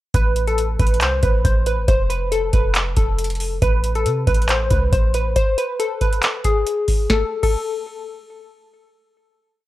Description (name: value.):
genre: hip hop, trap.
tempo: 138 BPM.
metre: 4/4.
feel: half-time.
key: A harmonic minor.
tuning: A4 = 443 Hz.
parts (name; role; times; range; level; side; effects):
glassy wavetable pluck; melody; 0.1-8.4 s; G#4 to C5; -22 LUFS; left 2 dB; chorus, low-pass filter.
clean 808-style bass; bass; 0.1-5.3 s; F1 to C3; -20 LUFS; equal; none.
booming analog drum machine; drums; 0.1-7.6 s; crash cymbal, handclaps, hi-hat, kick drum, snare drum; -19 LUFS; equal; none.
room: digital ambience.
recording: dry, gritty hardware recording.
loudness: -16 LUFS.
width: side -15 dB against mid.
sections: 0.1-7.1 verse; 7.1-9.7 final note.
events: none.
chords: 0.1 Am; 1.9 F; 3.6 Am; 5.4 N.C..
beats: | 0.14 0.58 1.01 1.45 | 1.88 2.32 2.75 3.19 | 3.62 4.05 4.49 4.92 | 5.36 5.79 6.23 6.66 | 7.10 7.53 7.97.